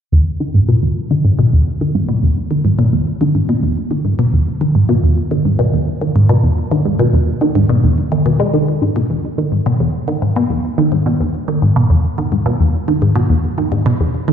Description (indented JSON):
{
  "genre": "ambient",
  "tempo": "107 BPM",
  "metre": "4/4",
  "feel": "straight",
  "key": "E major",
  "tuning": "A4 = 440 Hz",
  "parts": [
    { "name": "resonant blip pluck", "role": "solo", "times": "0.1-14.3 s", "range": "E2 to G#3", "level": "-12 LUFS", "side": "equal", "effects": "chorus, phaser, ping-pong delay" }
  ],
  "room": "wet concert hall reverb, RT60 2.2 s",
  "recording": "dark, warm production, nothing above 7.9 kHz",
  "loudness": "-13 LUFS",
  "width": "side -8 dB against mid",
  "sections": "0.1-9.1 A section; 9.1-14.3 B section",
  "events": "none",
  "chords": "none"
}